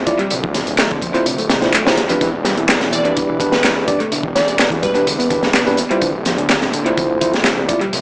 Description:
breakbeat, breaks; 126 BPM; 4/4; straight; E phrygian; A4 = 438 Hz
deep dark ambient pad; sustained chords; 0.0-8.0 s; F3 to E5; -27 LUFS; equal
detuned saw bass; bass; 0.0-8.0 s; D1 to E1; -22 LUFS; equal
bell-like tine electric piano; stabs; 0.1-7.8 s; D4 to D5; -19 LUFS; equal; analog delay
crunchy breakbeat drum kit; drums; 0.1-8.0 s; hi-hat, kick drum, snare drum; -18 LUFS; equal; analog delay
punchy analog drum machine; drums; 0.1-8.0 s; handclaps, hi-hat; -21 LUFS; equal; analog delay
picked electric bass; riff; 0.2-8.0 s; C3 to B3; -24 LUFS; equal; tube saturation, analog delay
glassy wavetable pluck; melody; 2.9-5.5 s; B4 to D5; -20 LUFS; equal; chorus, small speaker sound, cassette tape, analog delay
light reverb, small room ambience; echo-heavy mix, small speaker sound; -13 LUFS; side -27 dB against mid
0.0-8.0 A section
0.0 Dm9; 2.2 Em7; 6.0 Dm9
| 0.31 0.78 1.26 1.74 | 2.21 2.69 3.16 3.64 | 4.12 4.59 5.07 5.54 | 6.02 6.50 6.97 7.45 | 7.92

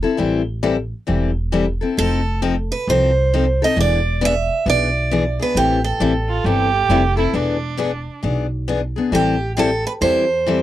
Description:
acoustic string swing (jazz manouche); 134 BPM; 4/4; swing 64% on 8ths; A minor; A4 = 442 Hz
picked steel-string acoustic guitar; accompaniment; 0.0-10.6 s; E3 to A4; -19 LUFS; left 5 dB
upright bass; bass; 0.2-10.6 s; E1 to E2; -21 LUFS; right 1 dB
picked steel-string acoustic guitar; melody; 2.0-10.6 s; G4 to E5; -20 LUFS; right 3 dB
warm violin; second line; 6.3-8.2 s; D4 to G4; -21 LUFS; right 7 dB
little or no reverb; dry, close 1970s-style studio recording; -16 LUFS; side -13 dB against mid
0.0-9.1 A section; 9.1-10.6 A section
0.0 Am7; 2.0 F7; 3.8 E7; 5.6 Am7; 7.3 E7; 9.1 Am7
| 0.20 0.65 1.09 1.54 | 1.98 2.43 2.88 3.32 | 3.77 4.22 4.66 5.11 | 5.55 6.00 6.45 6.89 | 7.34 7.79 8.23 8.68 | 9.13 9.57 10.02 10.47

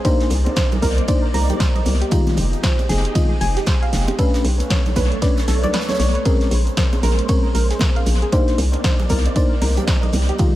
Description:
deep house; 116 BPM; 4/4; swing 60% on 16ths; A4 = 440 Hz
soft string machine; sustained chords; 0.0-10.6 s; Ab3 to D5; -29 LUFS; equal; phaser, ensemble chorus, sidechain pumping
soft round pluck; arpeggios; 0.0-10.4 s; G4 to Bb5; -26 LUFS; right 1 dB; chorus, cassette tape, sidechain pumping, dub echo
mellow FM electric piano; stabs; 0.0-10.6 s; Eb3 to C5; -25 LUFS; left 2 dB; chorus, sidechain pumping, dub echo
electronic kick drum; drums; 0.0-10.5 s; -19 LUFS; equal
punchy analog drum machine; drums; 0.0-10.5 s; hi-hat, ride cymbal, snare drum; -27 LUFS; right 1 dB; tape echo
warm soul drum kit; drums; 0.1-10.5 s; hi-hat, snare drum; -36 LUFS; right 2 dB
congas; percussion; 0.1-10.3 s; -28 LUFS; right 2 dB; tape echo
hollow knocking FM bass; bass; 0.3-10.3 s; F1 to C2; -19 LUFS; equal; sidechain pumping
little or no reverb; echo-heavy mix; -16 LUFS; side -15 dB against mid
0.0-10.6 A section
kick drops out 5.7-6.3
0.0 Cm9; 2.1 Fm9; 4.2 Bm9; 6.3 Bbm9; 8.3 Cm9
| 0.05 0.56 1.08 1.60 | 2.12 2.63 3.15 3.67 | 4.19 4.70 5.22 5.74 | 6.25 6.77 7.29 7.81 | 8.32 8.84 9.36 9.88 | 10.39

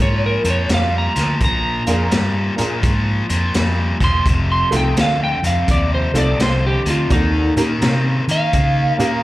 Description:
electric blues shuffle; 84 BPM; 4/4; swing 65% on 8ths; A4 = 440 Hz
electric slide guitar; melody; 0.0-9.2 s; Eb4 to C6; -21 LUFS; right 1 dB; plate reverb, slapback echo
cranked stack guitar; riff; 0.0-9.2 s; F2 to C4; -22 LUFS; left 2 dB; overdrive, slapback echo
vintage muted fingered electric bass; bass; 0.0-9.2 s; E1 to Eb3; -19 LUFS; equal
crunchy breakbeat drum kit; drums; 0.4-9.1 s; hi-hat, kick drum, snare drum; -21 LUFS; equal
honky-tonk upright piano; accompaniment; 1.9-9.2 s; A3 to D5; -22 LUFS; right 2 dB; plate reverb, slapback echo
light reverb; live gig heard through the venue's PA, club reverb; -15 LUFS; side -16 dB against mid
0.0-9.2 A section
electric slide guitar solo 0.0-9.2
0.0 Bb7; 4.3 F7; 7.1 Eb7
0.70 | 1.41 2.12 2.83 3.55 | 4.26 4.97 5.68 6.39 | 7.11 7.82 8.53

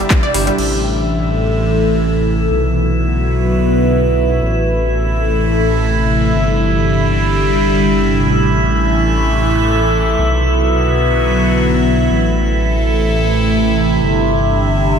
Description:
progressive house; free time; A dorian; A4 = 440 Hz
evolving wavetable pad; sustained chords; 0.0-15.0 s; C3 to B4; -16 LUFS; equal; phaser, built-in reverb, sidechain pumping
wide unison pluck; arpeggios; 0.0-0.5 s; G3 to D5; -22 LUFS; right 1 dB; sidechain pumping, dub echo
drifting glass-harmonics texture; texture; 0.0-15.0 s; E4 to E5; -20 LUFS; right 2 dB; chorus, built-in reverb, sidechain pumping
deep house drum kit; drums; 0.1-0.7 s; crash cymbal, handclaps, hi-hat; -21 LUFS; equal; overdrive, sidechain pumping on hats, sidechain pumping on cymbals
dark detuned saw bass; bass; 0.3-15.0 s; G1 to B1; -16 LUFS; equal; sidechain pumping
light reverb, digital ambience; -12 LUFS; side -7 dB against mid
0.6-15.0 A section
0.0 Gsus4; 0.6 Am; 2.5 Bm; 4.4 Am; 6.3 Gsus4; 8.3 Am; 10.2 Bm; 12.1 Am; 14.0 Gsus4
free time

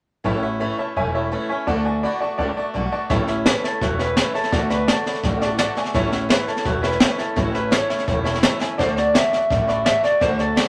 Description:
rockabilly; 169 BPM; 4/4; straight; A major; A4 = 442 Hz
honky-tonk upright piano; accompaniment; 0.2-10.7 s; C#5 to B5; -28 LUFS; equal
picked swing-style acoustic guitar; accompaniment; 0.2-10.7 s; A2 to F#4; -30 LUFS; equal
upright bass; bass; 0.2-10.6 s; E1 to D2; -27 LUFS; equal
jazz brush drum kit; drums; 3.1-10.7 s; hi-hat, kick drum, snare drum; -24 LUFS; equal
electric guitar through a small old amp; melody; 3.5-10.6 s; F#4 to E5; -25 LUFS; equal
moderate studio reverb, RT60 0.6 s; -21 LUFS; mono
0.2-3.1 A section; 3.1-10.7 B section
drum fill 8.6
0.2 A; 1.7 D; 3.1 A; 4.5 D; 5.9 A; 8.8 D
| 0.25 0.60 0.96 1.32 | 1.68 2.03 2.39 2.74 | 3.10 3.46 3.81 4.17 | 4.52 4.88 5.24 5.59 | 5.95 6.30 6.66 7.01 | 7.37 7.73 8.08 8.44 | 8.79 9.15 9.50 9.86 | 10.21 10.57

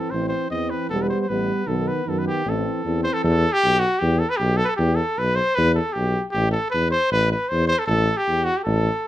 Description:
balkan folk, Balkan brass band; 154 BPM; 2/4; swing 56% on 16ths; A dorian sharp4; A4 = 442 Hz
warm trumpet; melody; 0.0-9.1 s; F#4 to D#5; -22 LUFS; equal
clear French horn; accompaniment; 0.0-3.2 s; B3 to C4; -30 LUFS; left 8 dB
dark euphonium; accompaniment; 0.0-3.2 s; D#3 to G3; -26 LUFS; right 5 dB
mellow tuba; bass; 0.1-8.9 s; E1 to F#2; -22 LUFS; equal
moderate small room reverb, RT60 0.5 s; -19 LUFS; side -13 dB against mid
0.0-3.2 A section; 3.2-9.1 B section
0.1 Am; 0.9 Em; 1.7 B; 2.5 Am; 3.2 E5; 6.3 A5
| 0.11 0.51 | 0.90 1.29 | 1.68 2.07 | 2.46 2.85 | 3.24 3.63 | 4.02 4.41 | 4.80 5.18 | 5.57 5.96 | 6.35 6.74 | 7.12 7.51 | 7.90 8.29 | 8.68 9.07

